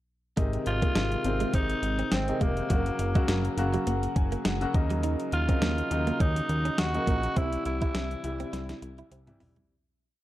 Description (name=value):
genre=1980s-style pop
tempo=103 BPM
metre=4/4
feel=swing 55% on 16ths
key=Ab mixolydian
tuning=A4 = 442 Hz
part: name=clear concert grand piano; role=accompaniment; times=0.4-9.7 s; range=C3 to Bb5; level=-32 LUFS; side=left 2 dB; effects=none
part: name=direct-recorded clean electric guitar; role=riff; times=0.4-9.7 s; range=Gb3 to E4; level=-37 LUFS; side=right 4 dB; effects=analog chorus, digital delay
part: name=fat analog bass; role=bass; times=0.4-9.6 s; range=F1 to Eb2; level=-30 LUFS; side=equal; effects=none
part: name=clean 12-bit digital drum machine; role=drums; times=0.4-9.7 s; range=hi-hat, kick drum, snare drum, toms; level=-28 LUFS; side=equal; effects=overdrive
part: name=growling tenor saxophone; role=melody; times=0.7-8.8 s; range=Bb3 to Gb4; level=-32 LUFS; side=equal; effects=none
room=light reverb, digital ambience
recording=dark, warm production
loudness=-25 LUFS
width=side -15 dB against mid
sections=0.4-9.7 verse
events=grand piano fill 3.3-5.0; fade-out 7.4-9.7; drum fill 8.5-9.7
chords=0.4 Ab; 2.7 Gb; 4.7 Ebm7; 7.4 C